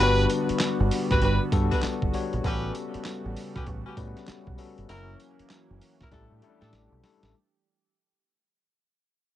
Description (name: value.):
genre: R&B, new jack swing.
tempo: 98 BPM.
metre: 4/4.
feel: swing 63% on 16ths.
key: unclear.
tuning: A4 = 440 Hz.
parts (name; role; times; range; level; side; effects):
barky tine electric piano; accompaniment; 0.0-7.4 s; F#3 to C#5; -30 LUFS; left 8 dB; fast stereo tremolo, cassette tape.
warm analog pad; sustained chords; 0.0-7.3 s; C#3 to G4; -36 LUFS; right 9 dB; lush chorus, cassette tape.
warm horn section; stabs; 0.0-6.7 s; C#4 to B4; -28 LUFS; equal; cassette tape.
deep dub fingered electric bass; bass; 0.0-7.3 s; F#1 to A2; -27 LUFS; right 1 dB; none.
boom bap sampler-style drum kit; drums; 0.3-7.3 s; handclaps, hi-hat, kick drum, snare drum, tambourine; -30 LUFS; right 1 dB; cassette tape.
room: little or no reverb.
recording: home recording on cassette.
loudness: -24 LUFS.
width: side -13 dB against mid.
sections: 0.0-7.3 A section.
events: fade-out 0.0-7.3; drum fill 6.1-7.3.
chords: 0.0 Gmaj7; 2.4 A13; 4.9 F#7; 6.1 A7sus4.